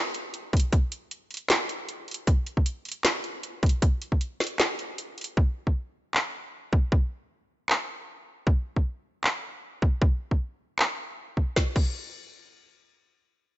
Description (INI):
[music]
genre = future bass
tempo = 155 BPM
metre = 4/4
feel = swing 54% on 16ths, half-time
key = none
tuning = none
[part]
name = trap drum kit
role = drums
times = 0.1-11.9 s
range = crash cymbal, handclaps, hi-hat, snare drum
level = -27 LUFS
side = equal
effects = none
[part]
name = electronic kick drum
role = drums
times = 0.5-11.9 s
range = none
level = -22 LUFS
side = equal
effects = none
[sound]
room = little or no reverb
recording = nothing above 7.8 kHz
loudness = -25 LUFS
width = side -16 dB against mid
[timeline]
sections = 0.0-11.6 A section; 11.6-13.6 B section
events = none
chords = none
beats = 0.34 | 0.73 1.11 1.50 1.89 | 2.27 2.66 3.05 3.44 | 3.82 4.21 4.60 4.98 | 5.37 5.76 6.14 6.53 | 6.92 7.31 7.69 8.08 | 8.47 8.86 9.24 9.63 | 10.02 10.40 10.79 11.18 | 11.56